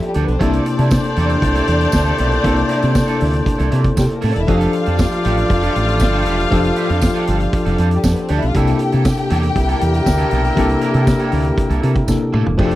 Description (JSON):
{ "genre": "disco", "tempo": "118 BPM", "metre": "4/4", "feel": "straight", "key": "C major", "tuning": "A4 = 440 Hz", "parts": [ { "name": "electric guitar at the edge of break-up", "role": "accompaniment", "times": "0.0-12.8 s", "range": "Bb3 to B4", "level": "-27 LUFS", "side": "right 7 dB", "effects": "lush chorus" }, { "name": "tine electric piano", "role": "accompaniment", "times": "0.0-12.8 s", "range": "C3 to A4", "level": "-21 LUFS", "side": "left 2 dB", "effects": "medium stereo tremolo" }, { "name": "mellow French horn section", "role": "sustained chords", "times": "0.0-12.8 s", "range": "Bb2 to A4", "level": "-26 LUFS", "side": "right 1 dB", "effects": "none" }, { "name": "warm horn section", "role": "stabs", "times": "0.0-12.8 s", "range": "D3 to D5", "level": "-24 LUFS", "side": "left 1 dB", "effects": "none" }, { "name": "vintage drum kit", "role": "drums", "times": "0.0-12.8 s", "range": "crash cymbal, hi-hat, kick drum, snare drum, toms", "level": "-20 LUFS", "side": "equal", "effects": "none" }, { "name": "rich studio string section", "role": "second line", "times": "0.1-12.8 s", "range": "G3 to G5", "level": "-23 LUFS", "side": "left 2 dB", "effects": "none" }, { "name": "fingered electric bass", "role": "bass", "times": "0.2-12.8 s", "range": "E1 to C3", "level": "-17 LUFS", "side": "equal", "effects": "none" }, { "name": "tambourine", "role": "percussion", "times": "0.9-12.2 s", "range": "none", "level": "-33 LUFS", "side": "right 11 dB", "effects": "none" } ], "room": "little or no reverb", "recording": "dry, close 1970s-style studio recording", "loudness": "-14 LUFS", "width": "side -15 dB against mid", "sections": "0.0-12.6 A section", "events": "drum fill 12.1-12.6", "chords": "0.4 C13; 4.5 F69; 8.5 C13" }